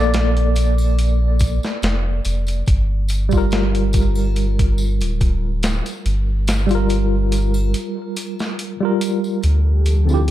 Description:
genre	trip hop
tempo	71 BPM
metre	4/4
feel	swing 54% on 16ths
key	unclear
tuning	A4 = 440 Hz
part	tine electric piano	accompaniment	0.0-10.3 s	D3 to D5	-22 LUFS	equal	overdrive, fast stereo tremolo, low-pass filter, tape echo
part	soft dub sub bass	bass	0.0-10.3 s	D1 to D2	-17 LUFS	equal	tube saturation
part	dusty soul sampler-style drum kit	drums	0.1-10.3 s	hi-hat, kick drum, snare drum	-22 LUFS	equal	high-pass filter on hats, high-pass filter on kick, high-pass filter on snare, high-pass filter on room
part	tambourine and triangle	percussion	0.1-10.3 s	none	-36 LUFS	left 2 dB	none
part	dark analog pad	sustained chords	9.5-10.3 s	F3 to G4	-29 LUFS	equal	chorus, vintage 12-bit sampler grit
part	flickering grainy texture	texture	9.6-10.3 s	A4	-33 LUFS	right 5 dB	built-in reverb
room	little or no reverb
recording	dark, warm production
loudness	-16 LUFS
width	side -13 dB against mid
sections	0.0-9.4 A section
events	filter sweep on tine electric piano 0.0-9.4; break 7.7-9.4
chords	0.0 Bbmaj7; 2.7 Gm7; 9.4 Dm11

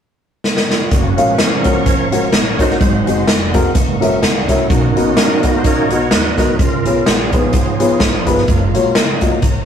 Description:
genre	uptempo gospel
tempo	127 BPM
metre	4/4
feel	swing 55% on 8ths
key	F# major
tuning	A4 = 436 Hz
part	swinging big-band drum kit	drums	0.4-9.5 s	hi-hat, kick drum, snare drum	-14 LUFS	equal	none
part	bright tonewheel organ	sustained chords	0.7-9.2 s	D#3 to C#5	-19 LUFS	right 3 dB	fast rotary speaker, chorus vibrato
part	warm studio string section	sustained chords	0.9-9.7 s	C#5 to C#6	-27 LUFS	right 2 dB	none
part	upright bass	bass	0.9-9.7 s	E#1 to D#2	-23 LUFS	equal	none
part	dark concert grand piano	accompaniment	1.2-9.4 s	G#2 to F#5	-17 LUFS	left 3 dB	none
room	light reverb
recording	rough rehearsal-room recording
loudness	-12 LUFS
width	side -8 dB against mid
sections	0.9-9.7 A section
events	drum fill 0.4-0.9; tonewheel organ solo 0.9-9.7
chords	0.0 N.C.; 0.9 F#maj7; 2.8 G#7; 3.8 F#7; 4.7 Bmaj7; 6.6 C#7; 8.5 F#maj7

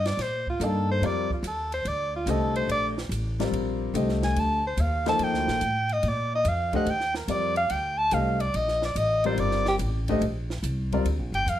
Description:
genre	modal jazz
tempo	144 BPM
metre	4/4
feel	swing 67% on 8ths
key	Bb major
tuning	A4 = 439 Hz
part	warm soprano saxophone	melody	0.0-11.6 s	F4 to A5	-26 LUFS	equal	plate reverb
part	upright bass	bass	0.0-11.6 s	G1 to Bb2	-29 LUFS	equal	none
part	compact cocktail drum kit	drums	0.1-11.6 s	hi-hat, kick drum, ride cymbal, snare drum	-38 LUFS	right 2 dB	none
part	warm concert grand piano	accompaniment	0.6-11.1 s	D3 to F5	-28 LUFS	left 4 dB	none
room	moderate small room reverb, RT60 0.6 s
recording	none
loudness	-24 LUFS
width	side -12 dB against mid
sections	0.0-11.6 A section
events	soprano saxophone solo 0.0-11.6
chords	0.2 Bbmaj9; 6.9 Ebmaj9

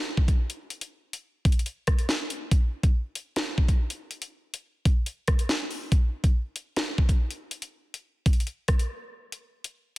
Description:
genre	hip hop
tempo	141 BPM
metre	4/4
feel	half-time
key	none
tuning	none
part	drill drum kit	drums	0.2-9.7 s	hi-hat, kick drum, rim click, snare drum	-23 LUFS	equal	none
room	little or no reverb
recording	dense, heavily limited modern master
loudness	-24 LUFS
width	side -19 dB against mid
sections	0.0-9.3 A section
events	break 8.9-9.3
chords	none

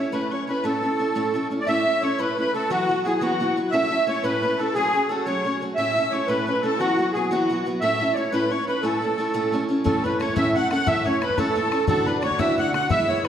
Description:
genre	celtic folk, Celtic jig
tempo	118 BPM (dotted quarters)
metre	6/8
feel	straight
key	A major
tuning	A4 = 440 Hz
part	musette accordion	melody	0.0-13.3 s	F#4 to F#5	-23 LUFS	right 2 dB	slapback echo
part	picked steel-string acoustic guitar	accompaniment	0.0-13.3 s	D2 to A4	-24 LUFS	equal	none
part	mid whistle	second line	0.1-13.3 s	F#5 to F#6	-29 LUFS	left 6 dB	none
part	bodhran	percussion	9.9-13.3 s	none	-29 LUFS	left 4 dB	none
room	wet recital hall reverb, RT60 1.6 s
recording	none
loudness	-20 LUFS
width	side -9 dB against mid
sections	0.0-1.7 A section; 1.7-9.9 A section; 9.9-13.3 B section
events	none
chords	0.0 A; 2.7 Esus2; 3.7 A; 4.8 F#madd9; 5.8 A; 6.8 Esus2; 7.8 A; 11.9 D

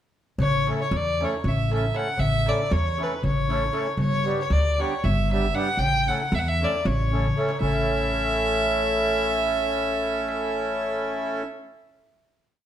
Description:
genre	balkan folk, Balkan wedding band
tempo	232 BPM (eighths)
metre	7/8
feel	straight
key	A mixolydian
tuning	A4 = 440 Hz
part	warm fiddle	melody	0.4-11.4 s	B4 to G5	-26 LUFS	equal	none
part	upright bass	bass	0.4-11.4 s	G1 to E2	-26 LUFS	equal	none
part	darbuka	percussion	0.4-7.9 s	none	-29 LUFS	left 2 dB	none
part	accordion	accompaniment	0.7-11.4 s	G3 to A4	-27 LUFS	right 1 dB	none
room	wet stone room reverb, RT60 1.0 s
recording	band playing live in one room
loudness	-21 LUFS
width	side -10 dB against mid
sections	0.4-7.6 A section; 7.6-11.3 final chord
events	drum fill 7.1-7.6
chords	0.4 A; 4.0 G; 5.8 A

